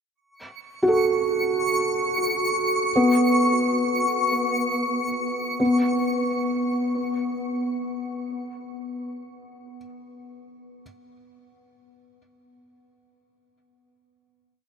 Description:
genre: ambient.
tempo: free time.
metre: none.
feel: none.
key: unclear.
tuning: A4 = 440 Hz.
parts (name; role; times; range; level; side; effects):
twinkling granular texture; texture; 0.6-5.6 s; C#6; -26 LUFS; equal; built-in reverb.
felt-muted upright piano; arpeggios; 0.8-10.8 s; B3 to A4; -23 LUFS; equal; tape echo.
room: wet huge ambient reverb, RT60 8.0 s.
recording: none.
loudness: -21 LUFS.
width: side -6 dB against mid.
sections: 0.2-5.6 A section; 5.6-8.3 final note.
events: none.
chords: 0.2 F#m; 2.9 Bsus2; 5.6 N.C..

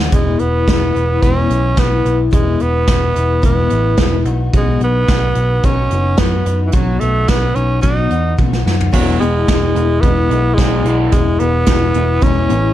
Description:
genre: folk rock and heartland rock.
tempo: 109 BPM.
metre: 4/4.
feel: straight.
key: E major.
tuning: A4 = 435 Hz.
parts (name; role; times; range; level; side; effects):
picked twelve-string acoustic guitar; accompaniment; 0.0-12.7 s; E2 to F#4; -21 LUFS; left 7 dB; none.
picked electric bass; bass; 0.0-12.7 s; E1 to F#2; -17 LUFS; equal; none.
raspy tenor saxophone; melody; 0.1-12.7 s; E3 to D#4; -18 LUFS; right 2 dB; none.
soft brush drum kit; drums; 0.1-12.6 s; crash cymbal, hi-hat, kick drum, snare drum, toms; -16 LUFS; equal; none.
raw garage guitar; riff; 8.9-12.7 s; E2 to E3; -22 LUFS; equal; overdrive.
room: small room ambience.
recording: dark, warm production.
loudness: -12 LUFS.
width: side -12 dB against mid.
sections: 0.0-8.9 A section; 8.9-12.7 A section.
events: drum fill 8.4-8.9.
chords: 0.1 E; 4.3 B; 8.9 E.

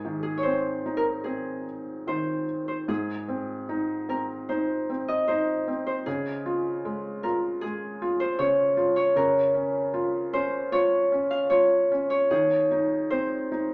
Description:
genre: children's music, lullaby.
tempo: 76 BPM.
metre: 4/4.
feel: rubato.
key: Ab major.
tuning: A4 = 442 Hz.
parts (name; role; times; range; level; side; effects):
Celtic harp; melody; 0.0-13.7 s; Ab4 to F5; -28 LUFS; equal; none.
felt-muted upright piano; accompaniment; 0.0-13.7 s; Ab2 to F4; -31 LUFS; equal; none.
room: wet studio reverb, RT60 0.7 s.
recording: none.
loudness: -26 LUFS.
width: mono.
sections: 0.0-2.9 A section; 2.9-13.7 B section.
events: none.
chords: 0.0 Ab; 6.1 Db; 9.2 Bbm/Db; 12.3 Ab/Eb.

